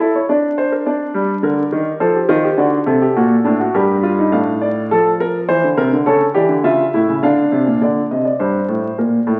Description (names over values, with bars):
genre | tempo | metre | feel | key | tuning
classical, baroque-style 3-part fugue for grand piano | 104 BPM | 3/4 | straight | unclear | A4 = 440 Hz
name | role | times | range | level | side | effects
warm grand piano | solo | 0.0-9.4 s | G2 to F5 | -16 LUFS | equal | none
room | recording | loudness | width
wet stone room reverb, RT60 1.3 s | very old 78 rpm record, vinyl crackle | -16 LUFS | mono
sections
0.0-7.8 A section; 7.8-9.4 B section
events
none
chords
0.3 Bbadd9/D; 0.9 Gm; 2.0 F; 2.6 D7; 3.7 Gm; 4.3 Dm/A; 5.5 C; 6.1 A7/C#; 7.2 Dm; 7.8 D5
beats
0.28 | 0.86 1.44 2.01 | 2.59 3.17 3.75 | 4.33 4.91 5.49 | 6.06 6.65 7.23 | 7.82 8.40 8.98